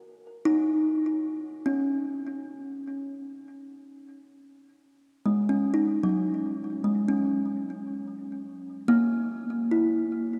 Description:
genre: ambient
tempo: 75 BPM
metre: 4/4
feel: straight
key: unclear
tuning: A4 = 439 Hz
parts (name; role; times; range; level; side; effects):
- kalimba; solo; 0.5-10.4 s; F#3 to E4; -28 LUFS; equal; delay
room: wet cathedral reverb, RT60 4.6 s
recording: in a vast, echoing space, cassette tape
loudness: -27 LUFS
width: mono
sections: 0.0-9.7 A section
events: none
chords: 0.0 D#7(no3); 3.3 F#add9; 9.7 N.C.

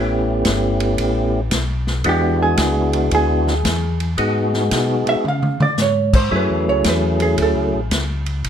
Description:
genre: soul jazz organ trio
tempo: 113 BPM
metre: 4/4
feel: swing 67% on 8ths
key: unclear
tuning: A4 = 444 Hz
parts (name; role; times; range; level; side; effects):
- percussive tonewheel organ; melody; 0.0-7.8 s; F#3 to G#4; -19 LUFS; left 1 dB; slow rotary speaker, overdrive, chorus vibrato, plate reverb
- mellow tonewheel organ; bass; 0.0-8.5 s; G1 to C#3; -21 LUFS; left 1 dB; chorus vibrato, slow rotary speaker
- vintage drum kit; drums; 0.4-8.5 s; crash cymbal, hi-hat, kick drum, ride cymbal, snare drum, toms; -22 LUFS; equal; none
- vintage hollow-body jazz guitar; accompaniment; 2.1-7.6 s; G4 to F5; -20 LUFS; right 4 dB; none
room: light reverb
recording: none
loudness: -16 LUFS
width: side -8 dB against mid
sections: 0.0-8.5 A section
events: hollow-body jazz guitar solo 0.0-8.5; drum fill 5.3-5.8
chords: 0.0 A9; 2.1 E9; 4.2 G#m7; 5.3 C#5; 6.3 F#m7

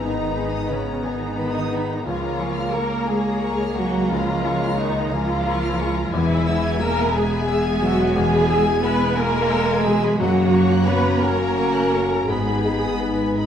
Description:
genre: cinematic, emotional film score for orchestra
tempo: 59 BPM (dotted quarters)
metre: 6/8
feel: rubato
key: unclear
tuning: A4 = 440 Hz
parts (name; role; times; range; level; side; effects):
- warm studio violin section; melody; 0.0-13.5 s; G#5 to B5; -33 LUFS; left 4 dB; none
- clear clarinet; second line; 0.0-13.5 s; G#3 to C#4; -29 LUFS; equal; none
- mellow hollow flute section; second line; 0.0-13.4 s; C#5 to B5; -30 LUFS; right 1 dB; none
- warm symphonic violin section; second line; 0.0-13.5 s; B4 to G#6; -34 LUFS; left 1 dB; none
- clear baby grand piano; accompaniment; 0.0-13.5 s; C#2 to C#5; -28 LUFS; left 3 dB; none
- warm symphonic viola section; accompaniment; 0.0-13.4 s; C#4 to B4; -25 LUFS; equal; none
- dark French horn section; sustained chords; 0.0-13.5 s; G#3 to G#4; -28 LUFS; left 3 dB; none
- concert harp; arpeggios; 0.0-13.5 s; E2 to A#5; -30 LUFS; left 8 dB; none
- dark symphonic double bass section; bass; 0.0-13.5 s; E1 to C#2; -27 LUFS; right 3 dB; none
- warm symphonic cello section; bass; 0.0-13.4 s; C#3 to B3; -25 LUFS; right 3 dB; none
room: wet recital hall reverb, RT60 1.6 s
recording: none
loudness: -18 LUFS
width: side -9 dB against mid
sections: 0.0-13.5 A section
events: none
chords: 0.0 G#madd9; 2.1 C#6; 6.1 E; 10.2 F#; 12.3 G#m

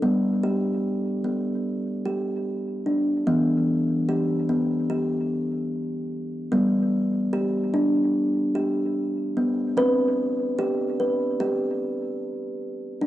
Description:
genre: world meditative, meditative tuned percussion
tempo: 74 BPM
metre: 4/4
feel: straight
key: G major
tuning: A4 = 440 Hz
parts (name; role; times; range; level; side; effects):
- kalimba; solo; 0.0-13.1 s; E3 to B4; -22 LUFS; equal; cassette tape, analog delay
room: moderate spring reverb, RT60 2.1 s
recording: home recording on cassette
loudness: -22 LUFS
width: side -14 dB against mid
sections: 0.0-3.3 A section; 3.3-13.1 B section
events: none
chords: 0.0 G; 3.3 Em; 6.5 G; 9.8 C5

